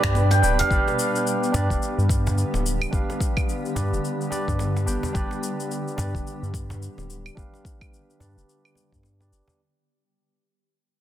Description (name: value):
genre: organic downtempo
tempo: 108 BPM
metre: 4/4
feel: swing 59% on 16ths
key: G major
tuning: A4 = 440 Hz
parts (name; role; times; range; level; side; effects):
- barky tine electric piano; accompaniment; 0.0-9.6 s; D4 to G5; -29 LUFS; right 2 dB; sidechain pumping, low-pass filter, tape echo
- granular cloud pad; sustained chords; 0.0-9.6 s; B2 to G4; -31 LUFS; left 1 dB; built-in reverb, vintage 12-bit sampler grit, sidechain pumping
- santur; arpeggios; 0.0-2.8 s; D4 to G5; -26 LUFS; right 1 dB; vintage 12-bit sampler grit, tape echo
- round analog bass; bass; 0.0-9.4 s; D1 to G2; -24 LUFS; equal; sidechain pumping
- deep house drum kit; drums; 0.0-9.6 s; cabasa, claves, finger snaps, hi-hat; -32 LUFS; left 3 dB; soft clipping on snare
- electronic kick drum; drums; 0.0-9.0 s; none; -26 LUFS; equal; none
- cajon; percussion; 0.2-9.6 s; none; -33 LUFS; equal; none
room: light reverb, digital ambience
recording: dense, heavily limited modern master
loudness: -22 LUFS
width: side -12 dB against mid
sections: 0.7-9.6 A section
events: fade-out 0.7-9.6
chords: 0.0 G